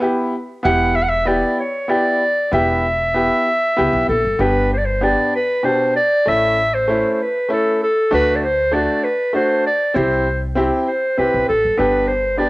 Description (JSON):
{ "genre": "klezmer", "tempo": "97 BPM", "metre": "3/4", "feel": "straight", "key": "E minor, G major from 4.4 s", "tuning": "A4 = 440 Hz", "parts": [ { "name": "clear upright piano", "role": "accompaniment", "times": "0.0-12.5 s", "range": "B2 to G4", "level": "-20 LUFS", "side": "equal", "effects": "cassette tape" }, { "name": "clear clarinet", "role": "melody", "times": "0.6-12.5 s", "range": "A4 to F#5", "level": "-17 LUFS", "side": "equal", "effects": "none" }, { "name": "upright bass", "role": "bass", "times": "0.7-12.5 s", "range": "E1 to D2", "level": "-24 LUFS", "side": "equal", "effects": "none" } ], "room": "moderate spring reverb, RT60 1.5 s", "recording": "home recording on cassette", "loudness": "-15 LUFS", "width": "side -20 dB against mid", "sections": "0.0-4.4 A section; 4.4-12.5 B section", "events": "speeding up 0.0-12.5", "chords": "0.0 Em; 4.4 G; 6.3 A; 8.1 D; 10.0 C; 11.8 G", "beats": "0.01 | 0.64 1.27 1.90 | 2.52 3.15 3.77 | 4.39 5.02 5.64 | 6.26 6.88 7.50 | 8.12 8.73 9.35 | 9.96 10.57 11.18 | 11.79 12.39" }